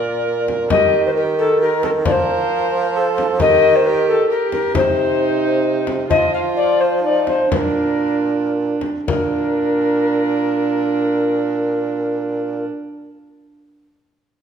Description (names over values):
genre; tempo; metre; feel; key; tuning
classical, renaissance-style consort dance; 109-134 BPM; 3/4; straight; Bb major; A4 = 441 Hz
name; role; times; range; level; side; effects
mellow alto recorder; melody; 0.0-12.6 s; A4 to F5; -19 LUFS; left 5 dB; none
warm viola; second line; 0.0-12.6 s; D4 to Bb4; -21 LUFS; right 4 dB; none
warm bassoon; bass; 0.0-12.6 s; Bb2 to F3; -20 LUFS; right 3 dB; none
frame drum; percussion; 0.5-9.3 s; none; -24 LUFS; left 4 dB; none
room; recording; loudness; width
wet recital hall reverb, RT60 1.6 s; minimal, uncompressed stereo recording; -15 LUFS; side -7 dB against mid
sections
0.0-9.1 A section; 9.1-12.4 B section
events
slowing down 5.4-9.1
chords
0.0 Bb; 0.7 Eb; 2.1 Fsus4; 3.4 Eb; 4.7 Cm; 6.1 Cmadd11/F; 7.5 Bb